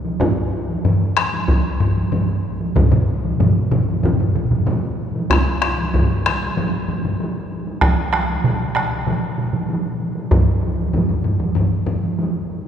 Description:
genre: japanese traditional, taiko drum ensemble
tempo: 95 BPM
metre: 4/4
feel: straight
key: none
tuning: none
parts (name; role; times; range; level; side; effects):
- taiko ensemble; percussion; 0.1-12.6 s; none; -23 LUFS; right 1 dB; none
- taiko ensemble; percussion; 0.2-12.0 s; none; -20 LUFS; left 1 dB; none
- taiko ensemble; percussion; 0.2-11.1 s; none; -21 LUFS; equal; none
- taiko ensemble; percussion; 2.8-9.7 s; none; -22 LUFS; right 1 dB; none
room: wet church reverb, RT60 3.5 s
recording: recorded in a church or concert hall, nothing above 10.9 kHz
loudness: -17 LUFS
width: side -8 dB against mid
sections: 0.0-5.3 A section; 5.3-12.7 B section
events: speeding up 0.0-12.7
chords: none

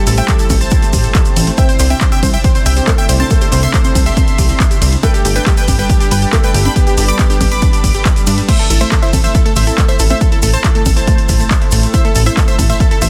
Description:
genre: uplifting trance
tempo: 139 BPM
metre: 4/4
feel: straight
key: A minor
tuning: A4 = 443 Hz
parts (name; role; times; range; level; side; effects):
- supersaw stab; melody; 0.0-13.1 s; G4 to D6; -23 LUFS; equal; sidechain pumping, digital delay
- analog pluck; second line; 0.0-13.1 s; G4 to D6; -28 LUFS; equal; none
- felt-muted upright piano; second line; 0.0-8.4 s; G3 to C5; -26 LUFS; equal; digital delay
- analog string pad; sustained chords; 0.0-13.1 s; C3 to B4; -28 LUFS; equal; ensemble chorus, sidechain pumping
- unison pluck; arpeggios; 0.1-13.1 s; G3 to A4; -27 LUFS; equal; sidechain pumping, digital delay
- plucky analog bass; bass; 0.1-13.1 s; G1 to G2; -16 LUFS; equal; sidechain pumping
- punchy analog drum machine; drums; 0.1-13.1 s; congas, crash cymbal, handclaps, hi-hat, ride cymbal; -23 LUFS; equal; none
- tube shaker; percussion; 0.1-13.1 s; none; -28 LUFS; equal; none
- electronic kick drum; drums; 0.3-12.9 s; none; -15 LUFS; equal; overdrive
room: digital ambience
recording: dense, heavily limited modern master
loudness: -12 LUFS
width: mono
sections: 0.0-8.5 A section; 8.5-13.1 A section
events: drop 0.0-8.5, 8.5-13.1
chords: 0.0 Am; 1.6 Cadd9; 5.0 Gadd9; 8.5 Am

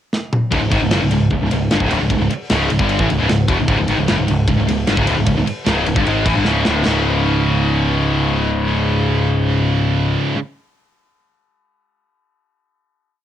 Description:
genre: heavy metal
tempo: 152 BPM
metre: 4/4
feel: straight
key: unclear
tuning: A4 = 443 Hz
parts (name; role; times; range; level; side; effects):
- tight metal drum kit; drums; 0.1-6.9 s; china cymbal, kick drum, ride cymbal, snare drum, toms; -21 LUFS; equal; cassette tape
- distorted electric guitar; riff; 0.5-10.4 s; C#2 to G#3; -19 LUFS; left 5 dB; overdrive, cassette tape
- high-gain distorted guitar; riff; 0.5-10.4 s; C#2 to G#3; -22 LUFS; right 9 dB; distortion, cassette tape
- scooped high-gain guitar; riff; 0.5-10.4 s; C#2 to G#3; -23 LUFS; right 1 dB; distortion, cassette tape
- growling picked electric bass; bass; 0.5-10.2 s; C#1 to A1; -20 LUFS; equal; overdrive
room: light reverb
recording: home recording on cassette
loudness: -14 LUFS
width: side -10 dB against mid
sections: 0.0-0.5 pickup bar; 0.5-6.9 riff; 6.9-10.0 final chord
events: drum fill 0.1-0.5, 6.5-6.9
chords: 0.0 N.C.; 0.5 C#m; 6.9 C#5

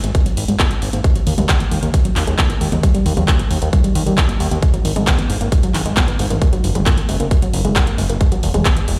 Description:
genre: uplifting trance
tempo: 134 BPM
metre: 4/4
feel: straight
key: G# minor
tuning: A4 = 440 Hz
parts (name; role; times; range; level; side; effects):
- unison pluck; arpeggios; 0.0-8.9 s; D#3 to B3; -25 LUFS; equal; sidechain pumping, dub echo
- fat analog bass; bass; 0.0-9.0 s; E1 to D#2; -21 LUFS; equal; sidechain pumping
- big-room dance drum kit; drums; 0.0-9.0 s; handclaps, hi-hat, toms; -25 LUFS; equal; none
- electronic kick drum; drums; 0.1-8.7 s; none; -18 LUFS; equal; none
room: light reverb, digital ambience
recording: played on a big sound system in a bare room, stone room reverb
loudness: -16 LUFS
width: mono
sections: 0.0-9.0 A section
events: filter sweep on synth pluck 0.0-9.0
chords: 0.0 G#m; 1.0 D#5; 2.8 D#; 4.6 G#m; 6.4 F#add9; 8.2 E

